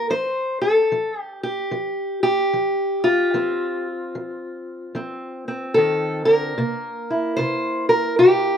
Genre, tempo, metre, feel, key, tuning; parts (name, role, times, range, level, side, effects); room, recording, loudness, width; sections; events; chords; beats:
acoustic country blues, solo or duo; 74 BPM; 4/4; swing 63% on 8ths; A4 = 441 Hz
fingerpicked steel-string acoustic guitar; solo; 0.0-8.6 s; C3 to C5; -19 LUFS; left 1 dB
light reverb; recorded outdoors, with no room sound; -18 LUFS; side -8 dB against mid
0.0-8.6 A section
0.1 F; 6.6 C7
| 0.10 0.91 1.72 2.53 | 3.34 4.14 4.95 5.76 | 6.57 7.38 8.18